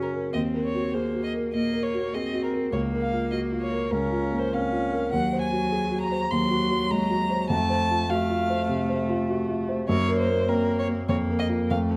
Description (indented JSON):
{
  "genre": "quick classical-period movement for piano trio",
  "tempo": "100 BPM",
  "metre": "4/4",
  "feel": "rubato",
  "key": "Bb minor",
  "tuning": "A4 = 440 Hz",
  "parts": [
    { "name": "warm violin", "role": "melody", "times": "0.0-11.8 s", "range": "Bb4 to C6", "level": "-31 LUFS", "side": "equal", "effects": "none" },
    { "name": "rich cello", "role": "second line", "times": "0.0-12.0 s", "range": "Gb3 to Db4", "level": "-32 LUFS", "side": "equal", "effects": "none" },
    { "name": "warm grand piano", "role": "accompaniment", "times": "0.0-12.0 s", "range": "Db2 to C5", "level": "-28 LUFS", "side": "equal", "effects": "none" }
  ],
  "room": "moderate recital hall reverb, RT60 1.5 s",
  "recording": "close, detailed microphones, faint mains hum",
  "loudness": "-26 LUFS",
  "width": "mono",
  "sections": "0.0-12.0 A section",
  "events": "none",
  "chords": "0.3 Ebm; 2.7 Bbm/Db; 5.1 Cdim/Eb; 7.5 F; 9.9 Gb; 11.1 Bb5/F"
}